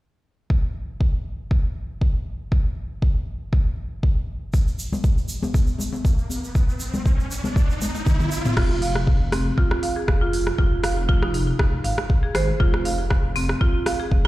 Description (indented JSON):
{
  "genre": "afro house",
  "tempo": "119 BPM",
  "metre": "4/4",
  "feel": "swing 54% on 16ths",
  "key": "F minor",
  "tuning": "A4 = 438 Hz",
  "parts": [
    { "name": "electronic kick drum", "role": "drums", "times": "0.5-14.2 s", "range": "none", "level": "-19 LUFS", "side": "equal", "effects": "none" },
    { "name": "egg shaker", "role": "percussion", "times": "4.5-8.5 s", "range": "none", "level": "-35 LUFS", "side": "right 3 dB", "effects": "none" },
    { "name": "riser", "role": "sound effects", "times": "4.9-8.6 s", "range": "none", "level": "-32 LUFS", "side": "equal", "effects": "none" },
    { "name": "congas", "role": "percussion", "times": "4.9-8.5 s", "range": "none", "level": "-29 LUFS", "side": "left 2 dB", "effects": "none" },
    { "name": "afro-pop drum kit", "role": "drums", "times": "7.8-14.3 s", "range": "crash cymbal, hi-hat, rim click, toms", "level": "-27 LUFS", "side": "equal", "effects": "none" },
    { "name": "marimba with hard mallets", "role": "arpeggios", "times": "8.6-14.3 s", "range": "C4 to F5", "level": "-26 LUFS", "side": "right 2 dB", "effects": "vintage 12-bit sampler grit, sidechain pumping, low-pass filter, ping-pong delay" },
    { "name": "dark detuned saw bass", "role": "bass", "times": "8.6-14.3 s", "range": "F1 to Ab1", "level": "-24 LUFS", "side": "equal", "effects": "sidechain pumping" }
  ],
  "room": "digital ambience",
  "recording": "played on a big sound system in a bare room, large studio reverb",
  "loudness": "-20 LUFS",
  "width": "side -17 dB against mid",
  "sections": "0.5-8.6 A section; 8.6-14.3 B section",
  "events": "riser 4.9-8.6; drum fill 7.8-8.6; filter sweep on marimba 8.6-14.3",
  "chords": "none",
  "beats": "| 0.50 1.01 1.51 2.01 | 2.52 3.02 3.53 4.03 | 4.54 5.04 5.54 6.05 | 6.55 7.06 7.56 8.06 | 8.57 9.07 9.58 10.08 | 10.59 11.09 11.59 12.10 | 12.60 13.11 13.61 14.12"
}